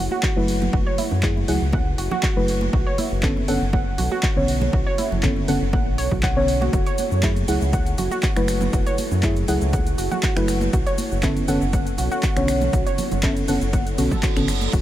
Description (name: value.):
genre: deep house.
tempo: 120 BPM.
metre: 4/4.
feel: swing 53% on 16ths.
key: unclear.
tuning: A4 = 441 Hz.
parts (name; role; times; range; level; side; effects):
warbly dusty pluck; arpeggios; 0.0-14.8 s; E4 to F#5; -28 LUFS; right 2 dB; chorus, sidechain pumping, ping-pong delay.
round analog bass; bass; 0.0-14.8 s; F#1 to F#2; -24 LUFS; equal; tube saturation, sidechain pumping.
warbly tape-like pad; texture; 0.0-14.8 s; E4 to C#5; -37 LUFS; right 3 dB; none.
congas; percussion; 0.1-14.7 s; none; -32 LUFS; right 3 dB; none.
electronic kick drum; drums; 0.2-14.8 s; none; -22 LUFS; equal; overdrive.
punchy analog drum machine; drums; 0.2-14.8 s; cabasa, crash cymbal, finger snaps, handclaps, hi-hat; -30 LUFS; equal; overdrive.
deep mellow chord stab; stabs; 0.4-14.5 s; D3 to C#5; -24 LUFS; equal; chorus, sidechain pumping, analog delay.
reverse cymbal; sound effects; 14.0-14.7 s; none; -30 LUFS; right 7 dB; none.
room: light reverb.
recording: none.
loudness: -18 LUFS.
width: side -13 dB against mid.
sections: 0.0-14.8 A section.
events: reverse cymbal 14.0-14.7.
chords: 0.0 F#m9; 2.7 Bm9; 6.7 F#m9; 10.7 Bm9.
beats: 0.23 | 0.73 1.23 1.73 2.23 | 2.73 3.23 3.73 4.23 | 4.73 5.23 5.73 6.23 | 6.73 7.23 7.73 8.23 | 8.73 9.23 9.73 10.23 | 10.73 11.23 11.73 12.23 | 12.73 13.23 13.73 14.23 | 14.73.